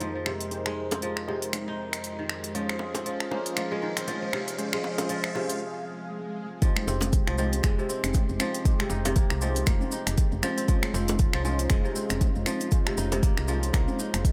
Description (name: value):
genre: afro house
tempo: 118 BPM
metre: 4/4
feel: swing 58% on 16ths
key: unclear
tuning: A4 = 442 Hz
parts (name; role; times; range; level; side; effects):
- warm analog pad; sustained chords; 0.0-14.3 s; F2 to F5; -40 LUFS; equal; chorus, sidechain pumping
- kora; arpeggios; 0.0-14.3 s; C3 to Eb4; -36 LUFS; equal; sidechain pumping, low-pass filter, delay
- warm analog keys; stabs; 0.0-14.3 s; Ab3 to C5; -37 LUFS; equal; chorus, sidechain pumping, low-pass filter, delay
- deep house drum kit; drums; 0.0-14.3 s; finger snaps, hi-hat; -35 LUFS; equal; none
- bongos; percussion; 0.0-13.9 s; none; -38 LUFS; equal; none
- riser and swell; sound effects; 1.2-6.6 s; none; -45 LUFS; equal; none
- electronic kick drum; drums; 6.6-14.3 s; none; -26 LUFS; equal; none
- cabasa; percussion; 6.6-14.3 s; none; -43 LUFS; equal; none
- congas; percussion; 6.6-14.1 s; none; -38 LUFS; equal; none
- woody FM bass; bass; 6.9-14.2 s; F1 to C2; -32 LUFS; equal; sidechain pumping
room: light reverb, studio ambience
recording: none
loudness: -27 LUFS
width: mono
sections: 0.0-6.6 A section; 6.6-14.3 B section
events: build-up 0.0-6.6; filter sweep on synth keys 0.0-6.6; riser 1.2-5.6; break 5.6-6.6; swell 5.6-6.6; drop 6.6-14.3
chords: 0.0 Abmaj7/F; 2.6 Dbmaj7; 6.6 Abmaj7/F; 10.7 Dbmaj7/F